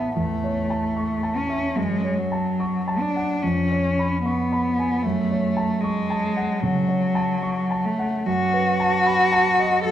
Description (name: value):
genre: classical, romantic duo for cello and grand piano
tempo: 75 BPM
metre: 4/4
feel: rubato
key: unclear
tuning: A4 = 440 Hz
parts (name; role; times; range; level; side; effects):
- rich cello; melody; 0.0-9.9 s; F#3 to A4; -22 LUFS; left 1 dB; none
- warm concert grand piano; accompaniment; 0.0-9.9 s; A1 to C#6; -24 LUFS; right 1 dB; none
room: wet recital hall reverb, RT60 1.6 s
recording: none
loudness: -20 LUFS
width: side -11 dB against mid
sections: 0.0-9.9 A section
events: none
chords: 0.0 A; 1.8 F#m; 3.4 C#7/E#; 5.0 F#m; 8.3 B7/F#